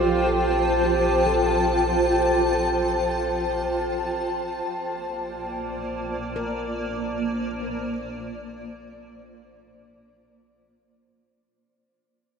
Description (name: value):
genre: ambient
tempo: free time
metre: none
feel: none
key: Bb major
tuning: A4 = 441 Hz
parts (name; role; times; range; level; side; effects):
- granular cloud pad; sustained chords; 0.0-11.5 s; Bb3 to A5; -23 LUFS; equal; built-in reverb, shimmer reverb
- handpan; arpeggios; 0.0-7.3 s; G4 to C5; -30 LUFS; right 2 dB; diffuse ambient delay, shimmer reverb
- warm sub bass; bass; 0.0-11.5 s; Bb1; -34 LUFS; equal; none
room: wet huge ambient reverb, RT60 7.3 s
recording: in a vast, echoing space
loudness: -22 LUFS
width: side -6 dB against mid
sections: 0.0-11.5 A section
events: fade-out on sub bass 0.0-11.5; fade-out 2.4-11.5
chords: 0.0 Bb6